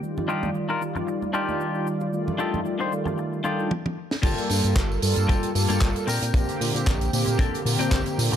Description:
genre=nu-disco, nu disco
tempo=114 BPM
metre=4/4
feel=swing 54% on 16ths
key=G minor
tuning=A4 = 440 Hz
part: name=mellow synth brass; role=accompaniment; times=0.0-8.4 s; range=D3 to D5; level=-27 LUFS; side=equal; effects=chorus, sidechain pumping, tape echo
part: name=cabasa, congas and bongos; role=percussion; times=0.0-3.7 s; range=none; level=-34 LUFS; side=right 3 dB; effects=none
part: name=clean electric guitar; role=riff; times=0.3-8.4 s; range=Bb3 to C5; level=-29 LUFS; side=left 4 dB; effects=wide subtle chorus, low-pass filter, tape echo
part: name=tight funk drum kit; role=drums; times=3.7-8.4 s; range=crash cymbal, handclaps, hi-hat, snare drum, tambourine, toms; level=-29 LUFS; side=right 2 dB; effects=none
part: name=chorused synth bass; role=bass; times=4.2-8.4 s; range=G1 to Bb2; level=-25 LUFS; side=equal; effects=none
part: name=kick drum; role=drums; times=4.2-8.0 s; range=none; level=-24 LUFS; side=equal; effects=none
room=light reverb, small room ambience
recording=none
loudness=-22 LUFS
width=side -9 dB against mid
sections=0.0-4.2 A section; 4.2-8.4 B section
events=drum fill 3.7-4.2; stop 3.7-4.2; drop 4.2-8.4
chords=0.0 Ebmaj9; 2.1 F13; 4.2 Gm9; 6.1 Bb69

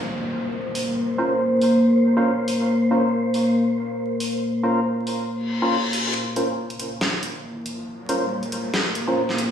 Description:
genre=deep dubstep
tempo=139 BPM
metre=4/4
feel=swing 56% on 16ths, half-time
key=Bb minor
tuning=A4 = 439 Hz
part: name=deep dark ambient pad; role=sustained chords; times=0.0-9.5 s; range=Bb3 to Bb4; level=-22 LUFS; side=left 1 dB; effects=chorus, built-in reverb
part: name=downlifter, reverse cymbal and riser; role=sound effects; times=0.0-9.5 s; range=none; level=-31 LUFS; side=left 1 dB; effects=none
part: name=wind-like tuned noise texture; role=texture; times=0.3-6.2 s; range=C5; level=-28 LUFS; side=right 3 dB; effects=built-in reverb
part: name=dubstep drum kit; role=drums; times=0.8-9.5 s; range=hi-hat, snare drum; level=-27 LUFS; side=equal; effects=overdrive, high-pass filter on hats, high-pass filter on snare, high-pass filter on cymbals, high-pass filter on room
part: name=percussive organ stab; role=stabs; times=1.2-9.2 s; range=Db4 to C5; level=-26 LUFS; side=equal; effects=chorus, vintage 12-bit sampler grit, dub echo
room=wet digital room reverb, RT60 1.0 s, digital ambience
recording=played on a big sound system in a bare room, stone room reverb, vinyl crackle, studio reverb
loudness=-20 LUFS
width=side -8 dB against mid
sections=0.0-6.1 A section; 6.1-9.5 B section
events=reverse cymbal 5.4-6.1; build-up 6.1-9.5; riser 6.1-9.5; filter sweep on ambient pad 6.1-9.5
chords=0.0 Bbmadd9

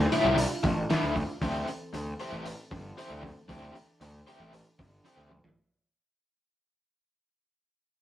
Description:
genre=psychedelic rock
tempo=115 BPM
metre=4/4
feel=straight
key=unclear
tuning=A4 = 439 Hz
part: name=mellow tonewheel organ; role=sustained chords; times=0.0-5.6 s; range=E3 to A4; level=-40 LUFS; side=right 5 dB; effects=none
part: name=fuzz picked electric bass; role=bass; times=0.0-5.4 s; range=G1 to D2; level=-32 LUFS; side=equal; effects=overdrive
part: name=cloth-damped thuddy drum kit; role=drums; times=0.0-5.6 s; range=hi-hat, kick drum, snare drum, toms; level=-32 LUFS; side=equal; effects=none
part: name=overdriven semi-hollow guitar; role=riff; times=0.1-5.4 s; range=A2 to C5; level=-30 LUFS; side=left 2 dB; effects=tremolo
room=moderate studio reverb, RT60 0.6 s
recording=rough rehearsal-room recording, tube saturation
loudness=-27 LUFS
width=side -12 dB against mid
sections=0.0-5.6 A section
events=fade-out 0.0-5.6; drum fill 5.3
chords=0.0 Dmadd9; 1.4 C6

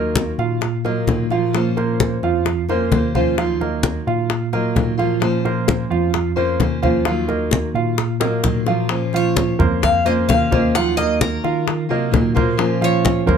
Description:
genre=latin, Cuban son and guajira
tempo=130 BPM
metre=4/4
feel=straight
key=Bb minor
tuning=A4 = 436 Hz
part: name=fingerpicked steel-string acoustic guitar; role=accompaniment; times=0.0-13.4 s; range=Eb3 to C5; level=-23 LUFS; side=left 4 dB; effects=none
part: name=warm grand piano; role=arpeggios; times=0.0-13.4 s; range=F3 to F5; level=-21 LUFS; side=right 7 dB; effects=none
part: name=mellow tine electric piano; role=bass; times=0.0-13.4 s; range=Eb2 to Eb3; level=-22 LUFS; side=equal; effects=medium stereo tremolo
part: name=bongos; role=percussion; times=0.2-13.4 s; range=none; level=-24 LUFS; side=left 8 dB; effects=none
part: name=congas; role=percussion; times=0.2-13.4 s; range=none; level=-21 LUFS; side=left 2 dB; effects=none
part: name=Cuban tres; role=melody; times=9.2-13.4 s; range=Bb4 to Gb5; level=-22 LUFS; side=left 4 dB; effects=none
room=light reverb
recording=close, detailed microphones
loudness=-16 LUFS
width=side -7 dB against mid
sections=0.0-8.9 A section; 8.9-13.4 B section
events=drum fill 8.2-8.9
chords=0.0 Ebmadd9; 1.5 Bbmadd9; 3.4 Ebmadd9; 5.2 Bbmadd9; 7.1 Ebmadd9; 8.9 Bbmadd9; 10.7 Ebmadd9; 12.6 Bbmadd9

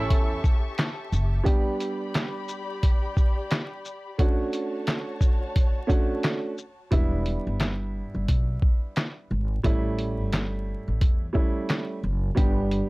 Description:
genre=hip hop, boom-bap hip-hop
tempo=88 BPM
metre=4/4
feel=swing 60% on 16ths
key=E dorian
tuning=A4 = 439 Hz
part: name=warm studio string section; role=sustained chords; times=0.0-6.9 s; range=F#4 to C#6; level=-37 LUFS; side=left 3 dB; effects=high-pass filter, low-pass filter
part: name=upright bass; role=bass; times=0.0-1.4, 6.9-12.8 s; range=E1 to E2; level=-27 LUFS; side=equal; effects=none
part: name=lo-fi sampler-style drum kit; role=drums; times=0.1-12.9 s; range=handclaps, hi-hat, kick drum, shaker, snare drum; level=-23 LUFS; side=equal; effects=none
part: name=dark upright piano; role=accompaniment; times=1.4-12.9 s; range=G3 to G4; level=-30 LUFS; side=right 2 dB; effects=high-pass filter, low-pass filter
room=little or no reverb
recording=dark, warm production, vinyl crackle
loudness=-23 LUFS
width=side -22 dB against mid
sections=0.0-6.9 A section; 6.9-12.9 B section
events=break 0.0-1.5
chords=0.0 A7; 1.5 G; 4.2 Dmaj7; 6.9 Em7; 9.6 A7; 12.4 G

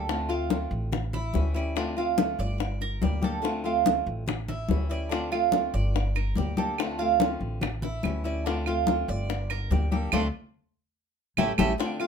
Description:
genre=latin, Cuban son and guajira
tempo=143 BPM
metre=4/4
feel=straight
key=D minor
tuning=A4 = 440 Hz
part: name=flamenco guitar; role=accompaniment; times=0.0-12.1 s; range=D3 to G4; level=-32 LUFS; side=left 3 dB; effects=none
part: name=Cuban tres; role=arpeggios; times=0.0-12.1 s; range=D4 to D5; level=-29 LUFS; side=right 10 dB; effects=none
part: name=upright bass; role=bass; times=0.0-11.7 s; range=G1 to D2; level=-30 LUFS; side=equal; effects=none
part: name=bongos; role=percussion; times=0.1-12.1 s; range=none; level=-32 LUFS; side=left 8 dB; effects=none
part: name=congas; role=percussion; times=0.1-12.1 s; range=none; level=-31 LUFS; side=left 4 dB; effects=none
part: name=claves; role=percussion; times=5.3-12.1 s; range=none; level=-34 LUFS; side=right 8 dB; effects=none
room=light reverb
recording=minimal, uncompressed stereo recording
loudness=-25 LUFS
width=side -6 dB against mid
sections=0.0-11.8 A section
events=band accent 10.1-11.8; drum fill 11.2-11.8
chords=0.1 Dm7; 0.9 A7; 1.8 Dm7; 2.6 Gm; 3.4 Dm7; 4.3 A7; 5.1 Dm7; 6.0 Gm; 6.8 Dm7; 7.6 A7; 8.5 Dm7; 9.3 Gm; 10.1 Dm7; 11.0 A7

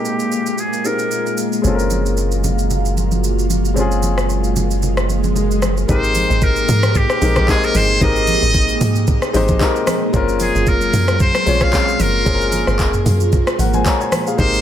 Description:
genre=amapiano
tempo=113 BPM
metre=4/4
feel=swing 55% on 16ths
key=unclear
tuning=A4 = 442 Hz
part: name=trumpet with metal mute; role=melody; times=0.0-1.4, 5.9-14.6 s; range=G4 to F5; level=-20 LUFS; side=equal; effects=low-pass filter, digital delay
part: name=warm baby grand piano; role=accompaniment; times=0.0-14.6 s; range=Ab3 to Bb5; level=-21 LUFS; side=left 3 dB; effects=low-pass filter
part: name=ensemble organ-string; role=sustained chords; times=0.0-14.6 s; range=Bb2 to Ab4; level=-23 LUFS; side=right 1 dB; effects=phaser, ensemble chorus, sidechain pumping, low-pass filter
part: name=downlifter and swell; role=sound effects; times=0.0-5.9 s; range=none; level=-28 LUFS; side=right 2 dB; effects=none
part: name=smooth R&B drum kit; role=drums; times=0.1-14.6 s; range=handclaps, hi-hat, kick drum, rim click, shaker, toms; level=-20 LUFS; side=equal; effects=none
part: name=punchy sub bass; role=bass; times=1.6-5.9 s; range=Gb1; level=-18 LUFS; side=equal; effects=none
part: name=congas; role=percussion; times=1.6-14.5 s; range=none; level=-27 LUFS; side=right 2 dB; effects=none
part: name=deep log drum bass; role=bass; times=5.9-14.6 s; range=Gb1 to Ab2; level=-18 LUFS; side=equal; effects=none
room=digital ambience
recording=none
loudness=-14 LUFS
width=side -10 dB against mid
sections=0.0-5.9 A section; 5.9-14.6 B section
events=filter sweep 0.0-5.9; swell 4.6-5.9; drop 5.9-14.6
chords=0.0 Abmaj9; 1.6 Gbmaj9#11; 5.9 Abmaj9; 10.1 Gbmaj9#11

